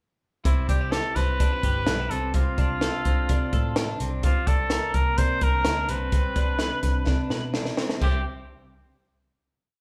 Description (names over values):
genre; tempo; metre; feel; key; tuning
jangly indie pop; 127 BPM; 4/4; straight; C major; A4 = 440 Hz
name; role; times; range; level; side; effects
clear trumpet; melody; 0.5-8.2 s; E4 to C5; -30 LUFS; equal; none
twelve-string electric guitar; arpeggios; 0.5-8.2 s; C3 to B4; -35 LUFS; equal; spring reverb
vintage muted picked electric bass; bass; 0.5-8.2 s; G1 to C3; -32 LUFS; equal; none
compact cocktail drum kit; drums; 0.5-8.1 s; crash cymbal, hi-hat, kick drum, snare drum; -27 LUFS; equal; none
room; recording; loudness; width
light reverb; band playing live in one room; -24 LUFS; mono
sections
0.5-8.0 verse; 8.0-9.8 final chord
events
drum fill 7.1-8.0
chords
0.5 C; 2.1 Dm/C; 4.0 Bb/C; 5.9 Csus2; 8.0 C5